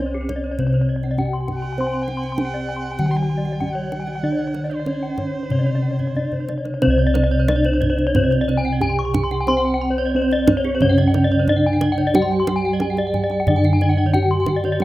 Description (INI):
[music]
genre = Balinese gamelan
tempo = 90-101 BPM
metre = 4/4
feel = straight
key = C pelog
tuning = A4 = 438 Hz
[part]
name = gamelan-type bronze metallophone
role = melody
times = 0.0-14.8 s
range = C4 to C5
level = -24 LUFS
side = right 1 dB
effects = none
[part]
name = gamelan-type bronze metallophone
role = accompaniment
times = 0.0-14.8 s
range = C3 to C4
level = -25 LUFS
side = right 2 dB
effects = none
[part]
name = gamelan-type bronze metallophone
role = arpeggios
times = 0.0-14.8 s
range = Ab4-40c to Db6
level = -24 LUFS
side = left 2 dB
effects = none
[part]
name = gamelan-type bossed gongs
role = bass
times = 0.0-14.8 s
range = C2 to C5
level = -22 LUFS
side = equal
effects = none
[part]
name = gamelan-type bronze metallophone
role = arpeggios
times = 0.1-14.7 s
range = Ab4-40c to C6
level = -32 LUFS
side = right 6 dB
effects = none
[part]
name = kendang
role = percussion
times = 0.3-14.8 s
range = none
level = -23 LUFS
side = right 2 dB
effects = none
[part]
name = warm erhu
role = second line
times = 1.6-6.5 s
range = C5 to C6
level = -35 LUFS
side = right 4 dB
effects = none
[sound]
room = light reverb, small room ambience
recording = rough home demo mix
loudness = -17 LUFS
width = side -16 dB against mid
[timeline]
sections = 0.0-6.8 A section; 6.8-14.8 B section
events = drum fill 6.0-6.8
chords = none